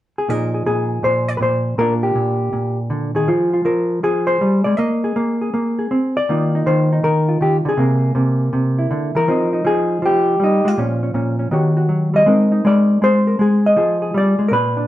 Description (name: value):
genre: solo jazz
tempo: 160 BPM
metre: 4/4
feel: swing 66% on 8ths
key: Eb major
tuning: A4 = 440 Hz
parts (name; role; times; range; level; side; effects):
- hollow-body jazz guitar; solo; 0.2-14.9 s; Bb2 to Eb5; -15 LUFS; equal; none
room: wet studio reverb, RT60 0.8 s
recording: band playing live in one room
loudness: -15 LUFS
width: side -14 dB against mid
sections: 0.3-6.3 A section; 6.3-14.9 B section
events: none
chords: 0.3 Bb7sus4; 1.8 Ebmaj9/Bb (rootless); 3.3 Fmadd9; 4.8 Bb9sus4; 6.3 Ebsus2; 7.8 C7b13; 9.3 Fm9; 10.8 Bbm; 11.5 Eb7alt; 12.3 Abadd9; 13.8 Fm7